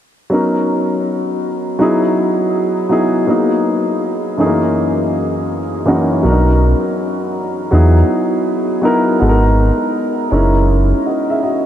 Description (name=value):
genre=lo-fi hip hop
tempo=81 BPM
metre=4/4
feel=swing 63% on 16ths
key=B major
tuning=A4 = 440 Hz
part: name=dark upright piano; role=accompaniment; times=0.3-11.7 s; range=F#2 to E5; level=-14 LUFS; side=equal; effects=none
part: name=smooth gliding synth bass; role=bass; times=6.2-10.9 s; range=F#1 to E2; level=-12 LUFS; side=equal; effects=none
room=wet huge ambient reverb, RT60 8.2 s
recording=dreamy mix soaked in reverb, cassette tape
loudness=-13 LUFS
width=side -10 dB against mid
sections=0.3-11.7 A section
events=none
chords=0.3 Bmaj9; 1.8 Emaj9; 3.3 G#m9; 4.4 F#13; 6.2 Bmaj9; 7.7 Emaj9; 9.2 G#m9; 10.3 F#13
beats=| 0.32 1.06 1.80 2.54 | 3.28 4.02 4.76 5.50 | 6.24 6.99 7.73 8.47 | 9.21 9.95 10.69 11.43